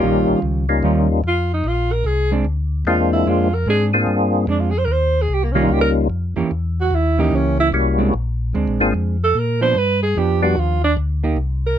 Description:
jazz; 148 BPM; 4/4; swing 64% on 8ths; A4 = 440 Hz
percussive tonewheel organ; melody; 0.0-10.6 s; G3 to Ab4; -17 LUFS; left 3 dB; chorus vibrato, slow rotary speaker
warm alto saxophone; melody; 0.0-11.8 s; Bb3 to C5; -20 LUFS; right 3 dB
hollow-body jazz guitar; accompaniment; 0.0-11.4 s; Eb3 to G4; -21 LUFS; right 5 dB
mellow tonewheel organ; bass; 0.0-11.8 s; Ab1 to Bb2; -20 LUFS; left 1 dB; slow rotary speaker
little or no reverb; close, detailed microphones; -16 LUFS; side -10 dB against mid
0.0-11.8 A section
alto saxophone solo 0.0-11.8
0.0 Eb9; 1.6 Bb9; 4.9 Eb9; 6.5 Edim7; 8.1 Bb9; 9.8 G7

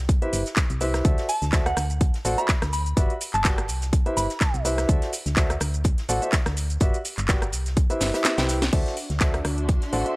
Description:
piano house; 125 BPM; 4/4; swing 55% on 16ths; D mixolydian; A4 = 436 Hz
solid FM bass; bass; 0.0-10.0 s; G1 to D2; -27 LUFS; equal; sidechain pumping
electronic kick drum; drums; 0.1-9.8 s; -21 LUFS; equal
house drum kit; drums; 0.1-10.1 s; crash cymbal, handclaps, hi-hat, rim click, shaker, snare drum; -27 LUFS; equal
open jazz drum kit; drums; 0.1-10.1 s; hi-hat, snare drum; -39 LUFS; left 1 dB
warm concert grand piano; riff; 0.2-10.2 s; E4 to G5; -28 LUFS; equal; sidechain pumping
soft synth bell; melody; 1.3-4.5 s; F#5 to B5; -28 LUFS; right 1 dB; chorus, phaser
dark studio string section; texture; 8.7-10.2 s; D4 to C6; -32 LUFS; equal; sidechain pumping
little or no reverb; dry, gritty hardware recording; -21 LUFS; side -23 dB against mid
0.0-8.7 A section; 8.7-10.2 B section
drop 0.0-8.7; drum fill 8.0-8.7; kick drops out 8.2-8.7
0.0 Cmaj7; 1.0 D9; 3.0 Gmaj7; 3.7 Cmaj7; 4.9 D9; 6.8 Gmaj7; 7.5 Cmaj7; 8.7 D9

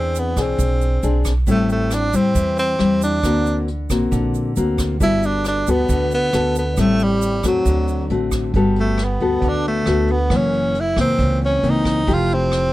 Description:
bossa nova; 136 BPM; 4/4; straight; G major; A4 = 441 Hz
breathy tenor saxophone; melody; 0.0-12.7 s; F#3 to F4; -20 LUFS; right 1 dB
nylon-string guitar; accompaniment; 0.0-12.7 s; F#2 to A4; -20 LUFS; left 2 dB
upright bass; bass; 0.0-12.7 s; F1 to E2; -22 LUFS; right 1 dB
vintage brush drum kit; drums; 0.1-12.6 s; hi-hat, kick drum, rim click; -26 LUFS; right 1 dB
egg shaker; percussion; 0.2-8.5 s; -35 LUFS; right 9 dB
little or no reverb; close, detailed microphones; -16 LUFS; side -16 dB against mid
0.0-8.5 A section; 8.5-12.7 B section
tenor saxophone solo 8.5-12.7
0.0 E7b13; 1.5 Am7; 3.2 Daug7; 5.0 Gmaj9; 6.8 Am7; 7.7 D7; 8.5 Gmaj9; 10.3 F#7#11; 12.1 Fmaj9

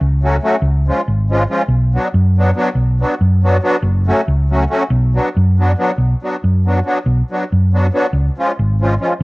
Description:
balkan folk, Balkan wedding band; 280 BPM (eighths); 5/8; straight; B dorian sharp4; A4 = 440 Hz
hollow-body short-scale fingered electric bass; bass; 0.0-9.2 s; F#1 to F#2; -13 LUFS; equal
musette accordion; accompaniment; 0.2-9.1 s; E#3 to F#4; -17 LUFS; equal; cassette tape
light reverb, studio reverb; home recording on cassette; -13 LUFS; side -23 dB against mid
0.0-6.0 A section; 6.0-9.2 B section
0.0 F#m; 0.6 C#; 1.7 Bm; 3.8 F#m; 4.9 Bm; 8.1 C#

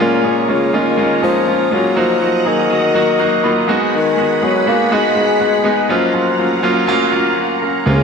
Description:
pop; 122 BPM; 4/4; straight; Db mixolydian; A4 = 440 Hz
mellow bassoon; melody; 0.0-8.0 s; Bb2 to Bb3; -17 LUFS; left 4 dB
bright concert grand piano; accompaniment; 0.0-8.0 s; Gb3 to Cb6; -15 LUFS; right 1 dB
string machine, violins; sustained chords; 0.0-8.0 s; F4 to Cb6; -22 LUFS; right 1 dB; ensemble chorus
smooth synth bass; bass; 7.9-8.0 s; Db2; -12 LUFS; right 1 dB
wet lush hall reverb, RT60 2.4 s; bright 1980s-style digital production; -12 LUFS; side -5 dB against mid
0.0-8.0 A section
grand piano fill 2.9-3.9
0.0 Db6; 2.0 Ebm; 3.7 Abm7; 5.9 Gbmaj7

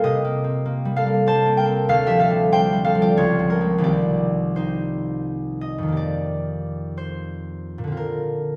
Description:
classical, solo harp piece; 84-98 BPM; 3/4; rubato; C dorian; A4 = 440 Hz
concert harp; solo; 0.0-8.6 s; C2 to A5; -21 LUFS; equal
wet recital hall reverb, RT60 1.6 s; recorded in a church or concert hall; -21 LUFS; mono
0.0-6.0 A section; 6.0-8.6 B section
0.0 Cm7; 1.9 Dm7; 3.2 Dbmaj7; 3.9 Cm7; 6.0 F9sus4; 8.0 Bbadd9

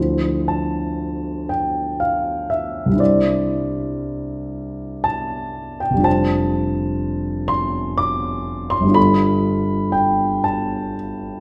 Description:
classical, impressionist solo piano; 53-63 BPM; 3/4; rubato; D minor; A4 = 441 Hz
warm grand piano; solo; 0.0-11.4 s; F1 to D6; -20 LUFS; equal
moderate recital hall reverb, RT60 1.6 s; -20 LUFS; mono
0.0-11.4 A section
0.0 Dm9; 3.0 Cadd9; 6.1 F69; 9.0 G9

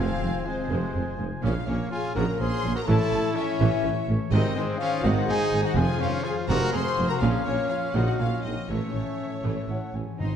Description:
cinematic; 124 BPM; 3/4; straight; A4 = 440 Hz
rich symphonic violin section; melody; 0.0-10.4 s; C5 to C6; -37 LUFS; left 5 dB
dark clarinet; second line; 0.0-10.2 s; C5 to Ab5; -39 LUFS; left 3 dB
mellow hollow concert flute; second line; 0.0-9.9 s; C5 to C6; -38 LUFS; left 2 dB
rich symphonic violin section; second line; 0.0-10.4 s; C5 to C6; -38 LUFS; left 2 dB
warm oboe; second line; 0.0-9.9 s; C#5 to Ab5; -39 LUFS; right 1 dB
clear symphonic viola section; accompaniment; 0.0-10.4 s; C3 to E4; -36 LUFS; right 2 dB
warm French horn section; sustained chords; 0.0-10.3 s; C4 to C5; -31 LUFS; left 4 dB
concert harp; arpeggios; 0.0-10.4 s; F2 to C#6; -36 LUFS; left 9 dB
warm trumpet; stabs; 0.0-9.9 s; Ab3 to Ab4; -33 LUFS; right 1 dB
dark symphonic cello section; bass; 0.0-10.4 s; F2 to Eb4; -31 LUFS; right 2 dB
mellow tuba; bass; 0.0-10.0 s; F1 to Bb1; -32 LUFS; right 3 dB
rich symphonic double bass section; bass; 0.0-10.4 s; F1 to Bb1; -29 LUFS; right 3 dB
timpani; percussion; 10.2-10.4 s; Ab2; -31 LUFS; left 1 dB
wet scoring stage reverb, RT60 1.6 s; dark, warm production; -23 LUFS; side -8 dB against mid
0.0-10.2 A section
0.0 Fm; 1.4 Bbm; 2.9 A; 4.3 Ab; 5.8 Fm; 7.2 Bbm; 8.7 A

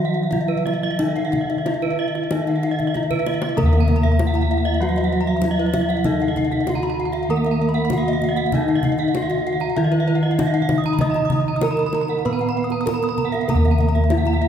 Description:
Balinese gamelan; 97 BPM; 4/4; straight; Eb pelog; A4 = 441 Hz
gamelan-type bronze metallophone; melody; 0.0-14.5 s; Eb4 to Eb5; -23 LUFS; left 1 dB
gamelan-type bronze metallophone; accompaniment; 0.0-14.5 s; Eb3 to Eb4; -26 LUFS; right 3 dB
gamelan-type bronze metallophone; arpeggios; 0.0-14.5 s; Cb5-20c to Eb6; -27 LUFS; left 3 dB
gamelan-type bronze metallophone; arpeggios; 0.0-14.4 s; Cb5-20c to Eb6; -28 LUFS; right 4 dB
gamelan-type bossed gongs; bass; 0.0-14.5 s; Eb2 to Eb5; -22 LUFS; left 1 dB
kendang; percussion; 0.3-14.3 s; -27 LUFS; left 1 dB
wet church reverb, RT60 3.4 s; recorded in a church or concert hall; -17 LUFS; side -8 dB against mid
0.0-3.6 A section; 3.6-14.5 B section
drum fill 2.8-3.6

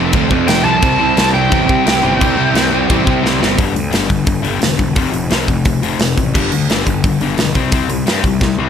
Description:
punk rock; 174 BPM; 4/4; straight; A4 = 436 Hz
crunchy overdriven guitar; riff; 0.0-3.6 s; F2 to C4; -18 LUFS; right 14 dB
distorted electric guitar; riff; 0.0-8.7 s; F2 to E4; -18 LUFS; left 11 dB; distortion
sludgy distorted guitar; riff; 0.0-3.6 s; F2 to F4; -22 LUFS; right 1 dB
fuzz picked electric bass; bass; 0.0-8.7 s; E1 to C3; -19 LUFS; equal; overdrive
big rock drum kit; drums; 0.1-8.5 s; crash cymbal, hi-hat, kick drum, snare drum; -16 LUFS; equal
biting lead guitar; melody; 0.5-3.2 s; G5 to A5; -17 LUFS; equal; overdrive, tape echo
light reverb; -12 LUFS; side -8 dB against mid
0.0-3.6 A section; 3.6-8.7 B section
drum fill 3.2-3.6, 8.4
0.0 F; 0.8 C; 3.6 G5; 5.0 F5; 6.3 G; 7.5 C5

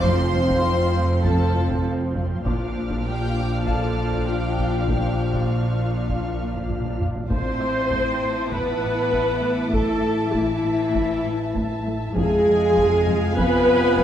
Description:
cinematic, suspense film score; 99 BPM; 4/4; straight; A harmonic minor; A4 = 440 Hz
warm symphonic violin section; melody; 0.0-14.0 s; E5 to C6; -33 LUFS; equal
warm symphonic violin section; second line; 0.0-14.0 s; F4 to A5; -31 LUFS; right 1 dB
dark symphonic viola section; accompaniment; 0.0-14.0 s; F3 to C5; -24 LUFS; equal
flickering grainy texture; sustained chords; 0.0-14.0 s; E4 to A5; -33 LUFS; left 1 dB; built-in reverb
mellow French horn section; sustained chords; 0.0-14.0 s; C3 to F4; -29 LUFS; left 2 dB
dark studio cello section; riff; 0.0-14.0 s; F2 to Bb3; -30 LUFS; equal
rich studio double bass section; bass; 0.0-14.0 s; F1 to F2; -26 LUFS; right 1 dB
rich symphonic cello section; bass; 0.0-14.0 s; F2 to C4; -28 LUFS; equal
taiko ensemble; drums; 0.0-14.0 s; -30 LUFS; equal
concert harp; texture; 2.5-12.2 s; A4 to D6; -36 LUFS; left 4 dB
warm studio violin section; texture; 2.5-14.0 s; A5 to Ab6; -39 LUFS; equal
moderate stone room reverb, RT60 1.0 s; dark, warm production; -19 LUFS; side -10 dB against mid
0.0-7.3 A section; 7.3-14.0 B section
drum fill 6.7-7.3
0.0 F; 2.5 Bb; 7.3 Am; 12.2 Fm

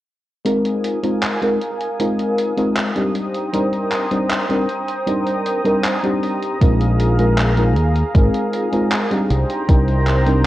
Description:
vaporwave; 78 BPM; 4/4; straight; A4 = 441 Hz
mellow FM electric piano; accompaniment; 0.4-10.5 s; G3 to Bb4; -19 LUFS; equal; analog chorus, analog delay
lush unison pad; sustained chords; 0.5-10.5 s; Ab4 to Eb6; -24 LUFS; equal; chorus, vintage 12-bit sampler grit
gated 80s digital drum machine; drums; 0.5-10.4 s; handclaps, hi-hat; -24 LUFS; equal; gated reverb
modern bright fingered electric bass; bass; 6.6-10.5 s; Ab1 to Eb2; -16 LUFS; equal
electronic kick drum; drums; 6.6-9.8 s; -13 LUFS; equal
light reverb; worn, warbling old tape, cassette tape, warbly pitch drift; -16 LUFS; side -15 dB against mid
0.5-10.5 A section
filter sweep on analog synth pad 0.5-10.5
0.5 Bb7sus4; 3.2 Cm7; 6.6 Bb7sus4; 9.3 Cm7

